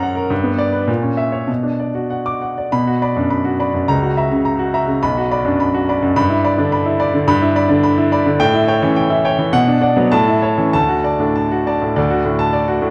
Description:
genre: classical, virtuoso piano study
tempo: 95-108 BPM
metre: 2/4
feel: rubato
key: B minor, D major from 7.3 s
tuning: A4 = 440 Hz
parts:
  - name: clear grand piano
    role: solo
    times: 0.0-12.9 s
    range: B1 to D6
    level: -16 LUFS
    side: equal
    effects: none
room: moderate recital hall reverb, RT60 1.6 s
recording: dark, warm production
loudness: -16 LUFS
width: mono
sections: 0.0-2.7 A section; 2.7-12.0 A section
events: none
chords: 0.3 G; 0.9 A#dim; 1.5 Bm; 3.9 F#7/C#; 5.0 Bm; 6.2 G6; 8.4 A7; 9.5 Bm; 10.1 A; 10.7 D

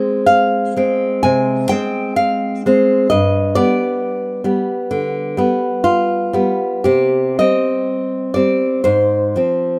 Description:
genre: romantic piece for solo classical guitar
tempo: 54-66 BPM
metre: 4/4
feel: rubato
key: unclear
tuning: A4 = 439 Hz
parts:
  - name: nylon-string guitar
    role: solo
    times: 0.0-9.8 s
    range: G2 to Ab5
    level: -16 LUFS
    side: equal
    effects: none
room: light reverb, studio reverb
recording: rough home demo mix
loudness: -16 LUFS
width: mono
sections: 0.0-9.8 A section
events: none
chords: 0.0 Fm; 3.1 G; 6.9 Cm; 8.9 Fm/Ab

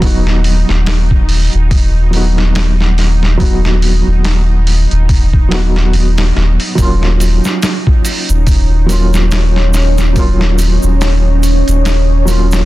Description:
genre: trip hop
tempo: 71 BPM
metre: 4/4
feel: swing 57% on 16ths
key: Eb minor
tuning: A4 = 440 Hz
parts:
  - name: felt-muted upright piano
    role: accompaniment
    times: 0.0-12.7 s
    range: F#3 to F#4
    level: -19 LUFS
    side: right 2 dB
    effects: tremolo, vintage 12-bit sampler grit, tape echo
  - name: soft dub sub bass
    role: bass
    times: 0.0-12.7 s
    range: D#1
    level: -11 LUFS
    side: equal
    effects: tube saturation
  - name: boom bap sampler-style drum kit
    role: drums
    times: 0.0-12.7 s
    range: hi-hat, kick drum, snare drum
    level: -15 LUFS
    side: equal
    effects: vintage 12-bit sampler grit, small room ambience
  - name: bowed-like drone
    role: texture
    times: 0.0-12.7 s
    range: Eb4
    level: -26 LUFS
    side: right 3 dB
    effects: built-in reverb
  - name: deep dark ambient pad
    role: sustained chords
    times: 8.1-12.7 s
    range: Db4 to Db5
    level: -20 LUFS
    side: equal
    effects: chorus, built-in reverb
  - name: egg shaker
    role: percussion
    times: 6.8-12.7 s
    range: none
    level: -27 LUFS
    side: right 2 dB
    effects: none
room: digital ambience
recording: dense, heavily limited modern master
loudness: -9 LUFS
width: side -17 dB against mid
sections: 0.0-12.7 A section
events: none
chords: 0.0 B/D#; 6.8 Ebm7

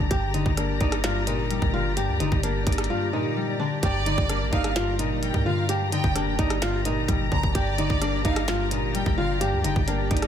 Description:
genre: hip hop, trap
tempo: 129 BPM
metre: 4/4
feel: half-time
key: G minor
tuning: A4 = 440 Hz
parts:
  - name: flamenco guitar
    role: melody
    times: 0.0-10.3 s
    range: D4 to G4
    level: -29 LUFS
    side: right 2 dB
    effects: low-pass filter, tape echo
  - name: concert harp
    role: accompaniment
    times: 0.0-10.3 s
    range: G2 to D5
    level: -28 LUFS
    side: left 4 dB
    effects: low-pass filter
  - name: rich symphonic string section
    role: sustained chords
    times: 0.0-10.3 s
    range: G4 to Bb5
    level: -32 LUFS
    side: left 3 dB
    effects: none
  - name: clean 808-style bass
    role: bass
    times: 0.0-10.3 s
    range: F1 to G2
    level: -29 LUFS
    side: right 1 dB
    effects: none
  - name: minimal click drum kit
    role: drums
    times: 0.1-10.3 s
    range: hi-hat, kick drum, rim click, snare drum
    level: -27 LUFS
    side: right 1 dB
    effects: overdrive
  - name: warm studio violin section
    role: second line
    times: 3.8-9.9 s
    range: D5 to Bb5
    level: -32 LUFS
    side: right 2 dB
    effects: tape echo
room: studio ambience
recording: none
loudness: -22 LUFS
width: side -9 dB against mid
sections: 0.0-10.3 A section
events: silent gap 2.9-3.8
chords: 0.0 Gm

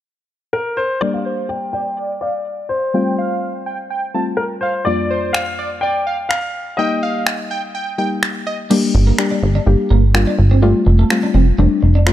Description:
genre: dance-pop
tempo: 125 BPM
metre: 4/4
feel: straight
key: unclear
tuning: A4 = 443 Hz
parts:
  - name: warm baby grand piano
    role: melody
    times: 0.5-8.2 s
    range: Bb4 to G5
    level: -21 LUFS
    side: left 2 dB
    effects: low-pass filter, tape echo
  - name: plucky unison lead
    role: melody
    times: 1.0-8.6 s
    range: C5 to A5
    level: -24 LUFS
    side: right 3 dB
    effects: low-pass filter, tape echo
  - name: soft round pluck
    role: accompaniment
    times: 1.0-12.1 s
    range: F2 to G4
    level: -20 LUFS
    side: left 3 dB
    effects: chorus, low-pass filter
  - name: pop drum kit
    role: drums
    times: 5.3-12.1 s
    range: crash cymbal, finger snaps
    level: -22 LUFS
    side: equal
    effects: overdrive
  - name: twelve-string electric guitar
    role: riff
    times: 8.7-12.0 s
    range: G3 to D4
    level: -22 LUFS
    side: right 5 dB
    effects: lush chorus
  - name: plucky analog bass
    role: bass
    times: 8.9-12.1 s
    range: F1 to G1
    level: -12 LUFS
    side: equal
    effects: none
room: light reverb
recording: none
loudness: -15 LUFS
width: side -13 dB against mid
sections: 0.0-1.0 A section; 1.0-8.7 B section; 8.7-12.1 C section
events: filter sweep 1.0-8.7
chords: 0.0 N.C.; 1.0 Gm; 2.9 Fadd9; 4.9 Bb6/F; 6.8 Eb/G; 8.7 Gm; 10.6 Fadd9

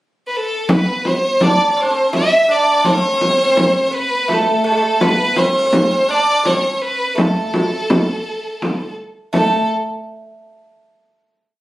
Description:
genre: Arabic maqam ensemble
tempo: 83 BPM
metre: 3/4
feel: straight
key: A maqam rast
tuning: A4 = 441 Hz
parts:
  - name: clear violin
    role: melody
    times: 0.3-9.7 s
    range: A4 to E5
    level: -16 LUFS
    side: equal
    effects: none
  - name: oud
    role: second line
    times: 0.7-9.7 s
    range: G#3-50c to E4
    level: -19 LUFS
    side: right 2 dB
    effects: none
  - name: frame drum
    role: percussion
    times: 0.7-9.7 s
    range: none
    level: -17 LUFS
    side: equal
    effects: none
room: wet studio reverb, RT60 0.7 s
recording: recorded on a phone in the room, studio reverb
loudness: -14 LUFS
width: side -16 dB against mid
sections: 0.0-0.7 pickup bar; 0.7-9.3 A section; 9.3-11.5 final note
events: none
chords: none

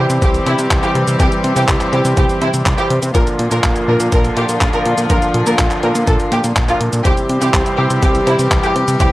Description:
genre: italo disco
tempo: 123 BPM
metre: 4/4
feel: straight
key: C mixolydian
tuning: A4 = 441 Hz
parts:
  - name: clear symphonic violin section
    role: melody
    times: 0.0-9.1 s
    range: E4 to Bb4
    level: -21 LUFS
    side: equal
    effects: vintage 12-bit sampler grit, analog delay
  - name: rich chamber string section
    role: sustained chords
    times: 0.0-9.1 s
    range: D3 to G4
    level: -19 LUFS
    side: left 1 dB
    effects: none
  - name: warm electric grand piano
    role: stabs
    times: 0.0-9.1 s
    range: Bb2 to C5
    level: -22 LUFS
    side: right 1 dB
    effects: none
  - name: fat analog bass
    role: bass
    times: 0.0-9.1 s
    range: Bb1 to C3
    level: -18 LUFS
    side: equal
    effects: none
  - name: clean 12-bit digital drum machine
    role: drums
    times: 0.1-9.1 s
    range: cabasa, handclaps, hi-hat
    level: -21 LUFS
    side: equal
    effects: none
  - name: electronic kick drum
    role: drums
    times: 0.2-9.1 s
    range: none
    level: -16 LUFS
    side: equal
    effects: overdrive
room: little or no reverb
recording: dry, gritty hardware recording, cassette tape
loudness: -12 LUFS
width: side -17 dB against mid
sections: 0.0-9.1 A section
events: none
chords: 0.0 C; 3.1 Bb; 7.1 C

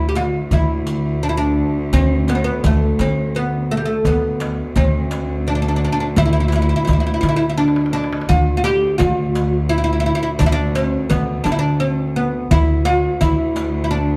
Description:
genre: Arabic maqam ensemble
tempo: 85 BPM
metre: 3/4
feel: straight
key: D maqam rast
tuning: A4 = 439 Hz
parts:
  - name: oud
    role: melody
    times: 0.0-14.2 s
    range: G3 to G4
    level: -22 LUFS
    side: equal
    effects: none
  - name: upright bass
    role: bass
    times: 0.0-14.2 s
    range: D2 to D3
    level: -22 LUFS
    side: equal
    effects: none
  - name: rich cello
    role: drone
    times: 0.0-14.2 s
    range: D2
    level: -29 LUFS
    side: equal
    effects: none
  - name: darbuka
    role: percussion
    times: 0.2-14.0 s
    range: none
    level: -26 LUFS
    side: equal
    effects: none
  - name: riq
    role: percussion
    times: 0.2-14.0 s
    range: none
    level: -34 LUFS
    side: equal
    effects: none
room: light reverb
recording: dark, warm production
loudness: -18 LUFS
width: mono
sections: 0.0-14.2 A section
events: drum fill 7.6-8.3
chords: none

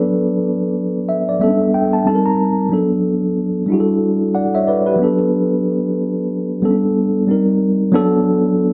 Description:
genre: R&B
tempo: 92 BPM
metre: 4/4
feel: swing 59% on 16ths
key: B minor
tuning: A4 = 436 Hz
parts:
  - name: mellow tine electric piano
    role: solo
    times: 0.0-8.7 s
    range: F#3 to Bb5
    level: -17 LUFS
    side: equal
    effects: none
room: wet studio reverb, RT60 0.6 s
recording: none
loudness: -17 LUFS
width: mono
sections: 0.0-7.9 A section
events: tine electric piano fill 0.8-2.7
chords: 0.0 Bm7; 1.4 A9sus4; 2.1 Cm7; 2.7 Bm7; 3.7 Em11; 5.0 Bm7; 6.6 A9sus4; 7.3 Cm7; 7.9 Bm7

